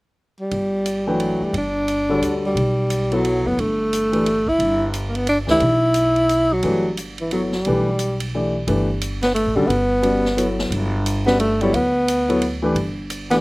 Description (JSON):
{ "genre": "modal jazz", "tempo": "176 BPM", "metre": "3/4", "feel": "swing 63% on 8ths", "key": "G lydian", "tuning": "A4 = 440 Hz", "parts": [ { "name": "warm tenor saxophone", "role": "melody", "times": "0.4-13.4 s", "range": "E3 to E4", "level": "-19 LUFS", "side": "equal", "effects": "none" }, { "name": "upright bass", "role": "bass", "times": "0.5-13.4 s", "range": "F#1 to D2", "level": "-25 LUFS", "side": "equal", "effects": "none" }, { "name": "swinging big-band drum kit", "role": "drums", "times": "0.5-13.4 s", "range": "hi-hat, kick drum, ride cymbal, snare drum", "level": "-32 LUFS", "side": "right 2 dB", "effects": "none" }, { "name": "warm grand piano", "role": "accompaniment", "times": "1.1-13.4 s", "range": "D3 to G5", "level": "-22 LUFS", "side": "left 1 dB", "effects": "none" } ], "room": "little or no reverb", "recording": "recorded outdoors, with no room sound", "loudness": "-17 LUFS", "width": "side -22 dB against mid", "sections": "0.5-8.7 A section; 8.7-13.4 B section", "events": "none", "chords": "0.0 N.C.; 0.5 Gmaj9; 4.6 Em/G; 8.7 Gmaj9; 12.8 Em/G", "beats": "0.18 | 0.52 0.86 1.20 | 1.54 1.88 2.22 | 2.56 2.90 3.24 | 3.58 3.92 4.26 | 4.60 4.94 5.28 | 5.62 5.96 6.30 | 6.64 6.98 7.32 | 7.66 8.00 8.34 | 8.68 9.02 9.36 | 9.70 10.04 10.38 | 10.71 11.05 11.39 | 11.73 12.07 12.41 | 12.75 13.09" }